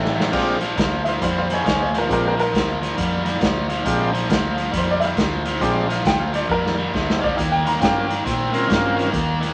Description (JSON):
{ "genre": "electric blues shuffle", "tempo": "136 BPM", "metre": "4/4", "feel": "swing 64% on 8ths", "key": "Bb mixolydian", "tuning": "A4 = 444 Hz", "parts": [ { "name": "biting overdriven guitar", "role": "riff", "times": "0.0-9.5 s", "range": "F2 to C4", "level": "-26 LUFS", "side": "equal", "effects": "none" }, { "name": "vintage muted fingered electric bass", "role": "bass", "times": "0.0-9.5 s", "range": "A1 to Bb2", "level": "-29 LUFS", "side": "equal", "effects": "none" }, { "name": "raw garage drum kit", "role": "drums", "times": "0.1-9.5 s", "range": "crash cymbal, hi-hat, kick drum, snare drum", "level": "-26 LUFS", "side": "equal", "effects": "none" }, { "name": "tonewheel organ", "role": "accompaniment", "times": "0.3-9.1 s", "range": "Ab3 to Bb4", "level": "-24 LUFS", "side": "equal", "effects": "overdrive, slow rotary speaker" }, { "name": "bright upright piano", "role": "second line", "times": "1.0-9.1 s", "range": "F4 to Bb5", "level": "-26 LUFS", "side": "equal", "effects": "none" } ], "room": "wet studio reverb, RT60 0.7 s", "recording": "none", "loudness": "-20 LUFS", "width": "mono", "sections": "0.3-9.5 A section", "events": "drum fill 0.0-0.3, 6.5-7.4; upright piano solo 0.3-9.5", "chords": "0.3 Bb13; 7.4 Eb13", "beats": "| 0.33 0.77 1.21 1.65 | 2.09 2.53 2.97 3.41 | 3.85 4.29 4.73 5.17 | 5.61 6.05 6.49 6.93 | 7.37 7.81 8.25 8.69 | 9.13" }